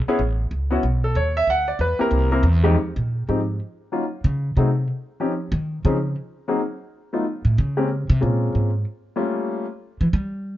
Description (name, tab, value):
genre	jazz piano trio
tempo	187 BPM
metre	4/4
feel	swing 63% on 8ths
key	unclear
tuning	A4 = 441 Hz
part	upright bass	bass	0.0-10.6 s	A1 to G3	-20 LUFS	equal	none
part	warm grand piano	melody	0.1-9.6 s	E#2 to F#5	-22 LUFS	left 1 dB	none
room	light reverb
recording	nothing above 7.5 kHz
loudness	-20 LUFS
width	side -14 dB against mid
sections	0.0-2.8 A section; 2.8-10.6 A section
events	grand piano solo 0.0-2.8; upright bass solo 2.8-10.6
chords	0.2 Aadd9; 1.5 Dsus2; 2.1 C7; 2.8 N.C.; 5.3 Dbsus2; 6.6 N.C.; 7.2 A; 7.9 Bbm9; 9.2 Gm7b5; 9.8 Em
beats	| 0.19 0.51 0.83 1.15 | 1.47 1.79 2.12 2.44 | 2.76 3.08 3.40 3.72 | 4.04 4.36 4.68 5.00 | 5.32 5.64 5.96 6.28 | 6.60 6.92 7.24 7.56 | 7.88 8.21 8.53 8.85 | 9.16 9.48 9.80 10.12 | 10.45